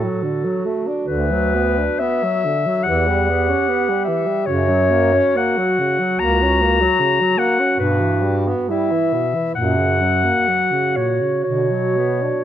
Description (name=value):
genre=classical, lyrical piece for single-reed quartet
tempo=58-76 BPM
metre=4/4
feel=rubato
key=unclear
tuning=A4 = 440 Hz
part: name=clear clarinet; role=melody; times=0.0-12.4 s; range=A4 to A#5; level=-19 LUFS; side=left 4 dB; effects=none
part: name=warm clarinet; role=second line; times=0.0-12.4 s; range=E4 to G4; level=-22 LUFS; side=right 5 dB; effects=none
part: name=warm tenor saxophone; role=accompaniment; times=0.0-12.4 s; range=A#2 to D4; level=-22 LUFS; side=left 1 dB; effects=none
part: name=warm bass clarinet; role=bass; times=0.0-12.3 s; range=C#2 to B2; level=-22 LUFS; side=right 1 dB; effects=none
room=moderate recital hall reverb, RT60 1.6 s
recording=none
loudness=-16 LUFS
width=side -10 dB against mid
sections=0.0-12.4 A section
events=none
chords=0.0 D; 1.1 Bm/D; 2.9 C#m7b5/E; 4.5 F#; 7.8 Em/G; 9.6 F#; 11.5 Bm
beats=0.21 | 1.06 2.00 2.85 3.66 | 4.45 5.34 6.19 6.98 | 7.78 8.68 9.55 10.48 | 11.46